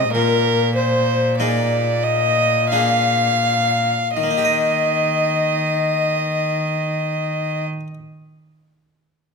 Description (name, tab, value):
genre	classical, baroque-style sonata movement with continuo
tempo	40-50 BPM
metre	3/4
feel	rubato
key	Eb major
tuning	A4 = 440 Hz
part	mellow hollow alto recorder	melody	0.0-7.7 s	Bb4 to F5	-20 LUFS	left 8 dB	none
part	warm violin	second line	0.0-7.7 s	Bb4 to F5	-21 LUFS	right 8 dB	none
part	harpsichord	accompaniment	0.0-7.9 s	Bb2 to Eb5	-26 LUFS	left 1 dB	none
part	rich cello	bass	0.0-7.6 s	Bb2 to Eb3	-23 LUFS	right 1 dB	none
room	moderate recital hall reverb, RT60 1.4 s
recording	close, detailed microphones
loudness	-16 LUFS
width	side -4 dB against mid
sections	0.0-4.2 A section; 4.2-8.6 B section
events	slowing down 0.0-4.2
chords	0.1 Bb7sus4; 2.7 Bb7; 4.2 Eb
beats	| 0.13 1.37 2.70 | 4.16 5.62 7.08